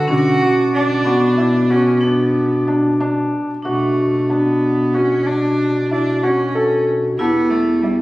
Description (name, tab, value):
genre	contemporary instrumental, chamber music in an uneven meter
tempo	186 BPM (eighths)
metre	11/8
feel	straight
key	B minor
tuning	A4 = 440 Hz
part	clear cello	melody	0.0-8.0 s	G3 to F#4	-22 LUFS	right 1 dB	none
part	vibraphone with hard mallets	second line	0.0-8.0 s	B3 to E4	-19 LUFS	equal	none
part	clear woodwind section	sustained chords	0.0-3.6 s	B4 to D6	-31 LUFS	equal	none
part	mellow bass clarinet	bass	0.0-8.0 s	E2 to B2	-20 LUFS	equal	none
part	celesta	texture	0.0-8.0 s	E5 to D6	-35 LUFS	left 8 dB	none
part	felt-muted upright piano	arpeggios	0.1-8.0 s	D3 to A4	-20 LUFS	equal	none
room	moderate concert hall reverb, RT60 2.5 s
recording	recorded on a phone in the room, club reverb, compression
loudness	-14 LUFS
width	side -17 dB against mid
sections	0.0-3.6 A section; 3.6-8.0 B section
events	none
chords	0.1 Bm7; 7.2 Em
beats	| 0.09 0.41 0.73 1.05 1.38 1.70 2.02 2.35 2.67 3.00 3.33 | 3.65 3.97 4.29 4.62 4.94 5.26 5.59 5.91 6.23 6.55 6.87 | 7.20 7.52 7.84